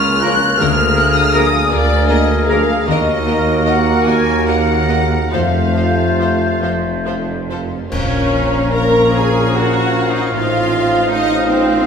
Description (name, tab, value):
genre	classical, slow romantic movement for symphony orchestra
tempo	46-55 BPM (dotted quarters)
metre	6/8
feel	rubato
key	Bb minor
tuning	A4 = 440 Hz
part	clear symphonic violin section	melody	0.0-11.9 s	C5 to Gb6	-23 LUFS	left 4 dB	none
part	clear clarinet	second line	0.0-11.9 s	F4 to C5	-25 LUFS	left 1 dB	none
part	mellow large flute ensemble	second line	0.0-11.9 s	D5 to Gb6	-22 LUFS	equal	none
part	warm oboe	second line	0.0-11.9 s	Bb4 to Eb5	-26 LUFS	equal	none
part	mellow bassoon	accompaniment	0.0-11.9 s	F3 to Bb3	-24 LUFS	equal	none
part	concert harp	arpeggios	0.0-11.9 s	A2 to Db6	-25 LUFS	left 8 dB	none
part	clear symphonic cello section	bass	0.0-11.9 s	Db2 to Bb2	-24 LUFS	right 2 dB	none
part	rich symphonic double bass section	bass	0.0-11.9 s	F1 to Eb2	-23 LUFS	right 2 dB	none
part	warm tuba	bass	0.0-11.9 s	F1 to Eb2	-23 LUFS	right 3 dB	none
part	clear symphonic violin section	second line	0.2-11.9 s	A4 to Bb5	-27 LUFS	left 2 dB	none
part	rich symphonic viola section	accompaniment	0.2-11.9 s	F3 to Bb4	-21 LUFS	right 1 dB	none
part	dark French horn section	sustained chords	0.2-11.9 s	A3 to Ab4	-22 LUFS	left 2 dB	none
part	warm trombone section	sustained chords	0.2-7.6 s	C3 to Bb3	-24 LUFS	right 5 dB	none
part	warm trumpet	stabs	0.2-11.9 s	Bb4 to F5	-24 LUFS	equal	none
part	cymbal swell, clash cymbals and concert bass drum	percussion	5.3-9.5 s	none	-26 LUFS	equal	none
room	wet recital hall reverb, RT60 1.6 s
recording	recorded in a church or concert hall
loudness	-12 LUFS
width	side -6 dB against mid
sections	0.0-7.9 A section; 7.9-11.9 B section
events	band accent 7.9-8.7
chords	0.0 Bbm/Db; 0.6 Bb7/D; 2.9 Ebm; 5.3 F; 7.9 Bbm; 10.3 F7/A